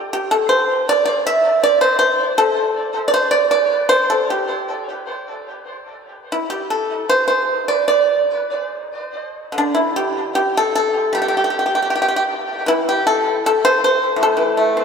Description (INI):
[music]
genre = chinese traditional, Chinese solo plucked strings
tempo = 71-81 BPM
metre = 4/4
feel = rubato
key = D shang mode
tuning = A4 = 436 Hz
[part]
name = pipa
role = solo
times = 0.1-14.8 s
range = A2 to E5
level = -15 LUFS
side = equal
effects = diffuse ambient delay
[sound]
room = wet lush hall reverb, RT60 2.5 s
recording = dreamy mix soaked in reverb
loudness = -15 LUFS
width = side -6 dB against mid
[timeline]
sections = 0.0-9.5 A section; 9.5-14.8 B section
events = none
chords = none